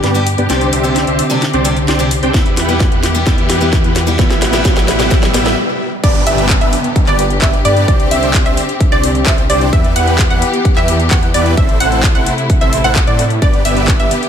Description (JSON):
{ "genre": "EDM, festival progressive house", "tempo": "130 BPM", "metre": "4/4", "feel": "straight", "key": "G major", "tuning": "A4 = 440 Hz", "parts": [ { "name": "warm studio string section", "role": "sustained chords", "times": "0.0-14.3 s", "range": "C3 to G4", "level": "-20 LUFS", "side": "left 1 dB", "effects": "sidechain pumping, low-pass filter" }, { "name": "dense compressed supersaw", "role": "riff", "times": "0.0-14.2 s", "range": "B3 to G5", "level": "-18 LUFS", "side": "equal", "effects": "sidechain pumping, low-pass filter, ping-pong delay" }, { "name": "wide detuned saw bass", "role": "bass", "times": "0.0-14.1 s", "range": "G1 to A2", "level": "-18 LUFS", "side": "equal", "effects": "chorus, sidechain pumping" }, { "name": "house drum kit", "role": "drums", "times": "0.0-14.3 s", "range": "crash cymbal, handclaps, hi-hat, snare drum", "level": "-20 LUFS", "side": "left 1 dB", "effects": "overdrive, studio ambience" }, { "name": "riser and downlifter", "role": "sound effects", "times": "1.8-9.7 s", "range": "none", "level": "-24 LUFS", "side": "right 2 dB", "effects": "none" }, { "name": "picked steel-string acoustic guitar", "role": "accompaniment", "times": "0.1-5.6 s", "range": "G2 to G4", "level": "-20 LUFS", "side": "left 1 dB", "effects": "sidechain pumping, ping-pong delay" }, { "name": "electronic kick drum", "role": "drums", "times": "2.3-14.0 s", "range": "none", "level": "-13 LUFS", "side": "equal", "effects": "studio ambience" }, { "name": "wide unison pluck", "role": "arpeggios", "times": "6.0-14.2 s", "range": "D5 to F#5", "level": "-18 LUFS", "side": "right 1 dB", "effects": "sidechain pumping, ping-pong delay" } ], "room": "light reverb", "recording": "none", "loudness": "-10 LUFS", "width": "side -8 dB against mid", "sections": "0.0-6.0 A section; 6.0-14.3 B section", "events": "build-up 0.0-6.0; drum fill 0.0-5.6; filter sweep on supersaw synth 0.0-6.0; riser 1.8-5.6; stop 5.6-6.0; drop 6.0-14.3", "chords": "0.5 Csus2; 2.3 Em; 4.2 Am; 6.0 G; 7.9 Csus2; 9.7 Em; 11.6 Am; 13.4 G" }